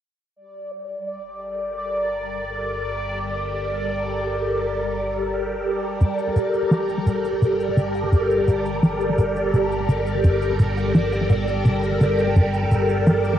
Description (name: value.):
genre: ambient, sequencer-driven space music.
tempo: 85 BPM.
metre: 4/4.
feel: straight.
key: G minor.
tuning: A4 = 440 Hz.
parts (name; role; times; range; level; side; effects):
phased string machine; sustained chords; 1.6-13.4 s; G3 to D5; -22 LUFS; equal; ensemble chorus, phaser, cassette tape.
analog drone; bass; 1.8-13.4 s; G1; -28 LUFS; equal; chorus.
bubbling stepped-filter texture; texture; 0.4-6.0 s; D5; -28 LUFS; equal; chorus, built-in reverb, cassette tape.
thumb-piano-like synth pluck; arpeggios; 6.0-13.4 s; none; barely audible; none; none.
tight sequencer bass; riff; 6.0-13.3 s; G2 to F3; -19 LUFS; equal; cassette tape, analog delay.
cabasa and woodblock; percussion; 6.0-13.4 s; none; -48 LUFS; equal; cassette tape, analog delay.
room: moderate spring reverb, RT60 3.0 s.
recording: home recording on cassette.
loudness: -19 LUFS.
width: side -11 dB against mid.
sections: 0.4-6.0 A section; 6.0-13.4 B section.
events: fade-in on string machine 0.4-6.0; fade-in on synth drone 0.4-6.0; filter sweep on analog synth bass 6.0-13.4.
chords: 0.4 Gmadd9.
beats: | 0.36 1.07 1.77 2.48 | 3.19 3.89 4.60 5.30 | 6.01 6.71 7.42 8.13 | 8.83 9.54 10.24 10.95 | 11.66 12.36 13.07.